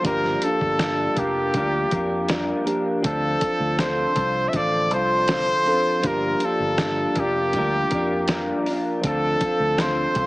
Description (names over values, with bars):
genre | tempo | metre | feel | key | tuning
indie pop, bedroom pop | 80 BPM | 4/4 | straight | G minor | A4 = 440 Hz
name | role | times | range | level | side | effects
barky tine electric piano | accompaniment | 0.0-10.3 s | F3 to A4 | -28 LUFS | right 1 dB | overdrive, cassette tape
electric guitar through a small old amp | accompaniment | 0.0-10.3 s | D3 to Bb4 | -26 LUFS | left 1 dB | analog chorus, warbly pitch drift
vintage muted fingered electric bass | bass | 0.0-10.3 s | F1 to F2 | -30 LUFS | equal | none
dusty soul sampler-style drum kit | drums | 0.0-10.3 s | hi-hat, kick drum, snare drum | -27 LUFS | equal | none
clear trumpet | melody | 0.1-10.3 s | G4 to E5 | -23 LUFS | equal | wide subtle chorus, analog delay
room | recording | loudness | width
light reverb, digital ambience | heavily compressed radio sound, small speaker sound | -20 LUFS | side -20 dB against mid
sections
0.0-10.3 A section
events
none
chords
0.0 Gm7; 3.0 Dm7; 6.0 Gm7; 9.0 Dm7